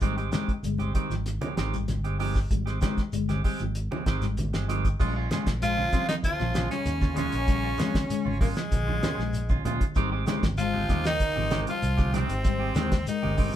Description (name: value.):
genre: afrobeat.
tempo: 96 BPM.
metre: 4/4.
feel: straight.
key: Bb dorian.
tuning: A4 = 440 Hz.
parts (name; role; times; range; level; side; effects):
mellow electric guitar; arpeggios; 0.0-13.5 s; Eb3 to Ab3; -34 LUFS; left 7 dB; none.
clean electric guitar; stabs; 0.0-13.6 s; Eb3 to G4; -33 LUFS; right 6 dB; none.
fingered electric bass; bass; 0.0-13.5 s; G1 to Bb2; -30 LUFS; equal; none.
cloth-damped thuddy drum kit; drums; 0.0-13.5 s; crash cymbal, hi-hat, kick drum, snare drum; -28 LUFS; equal; none.
congas; percussion; 0.0-13.5 s; none; -35 LUFS; right 2 dB; none.
shekere; percussion; 0.0-13.6 s; none; -38 LUFS; left 2 dB; none.
raspy tenor saxophone; melody; 5.6-13.5 s; Ab3 to F4; -30 LUFS; equal; none.
brilliant trombone; second line; 5.6-13.5 s; Ab3 to F4; -39 LUFS; right 4 dB; none.
growling bass trombone; second line; 5.6-13.5 s; Ab2 to F3; -36 LUFS; left 4 dB; none.
room: moderate small room reverb, RT60 0.5 s.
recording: band playing live in one room.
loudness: -24 LUFS.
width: side -11 dB against mid.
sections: 0.0-5.0 A section; 5.0-13.6 B section.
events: none.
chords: 0.0 Abmaj7; 5.0 Bbm7; 10.0 Abmaj7.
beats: | 0.01 0.63 1.26 1.88 | 2.50 3.13 3.75 4.37 | 4.99 5.61 6.24 6.86 | 7.48 8.10 8.72 9.34 | 9.96 10.59 11.21 11.83 | 12.45 13.07.